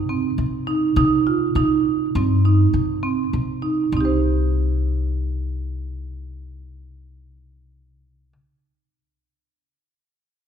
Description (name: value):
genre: progressive instrumental, band music in an uneven meter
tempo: 102 BPM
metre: 5/4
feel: straight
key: C minor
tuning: A4 = 440 Hz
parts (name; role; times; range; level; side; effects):
- upright bass; bass; 0.0-8.3 s; C2 to C3; -22 LUFS; left 2 dB; none
- marimba with medium hard mallets; arpeggios; 0.1-8.4 s; C4 to C5; -20 LUFS; right 5 dB; none
room: wet scoring stage reverb, RT60 1.8 s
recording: recorded in a church or concert hall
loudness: -18 LUFS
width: side -8 dB against mid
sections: 0.0-3.9 A section; 3.9-6.9 B section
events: none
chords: 0.0 Cm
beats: 0.38 | 0.96 1.55 2.14 2.73 3.32 | 3.91 4.50 5.09 5.67 6.26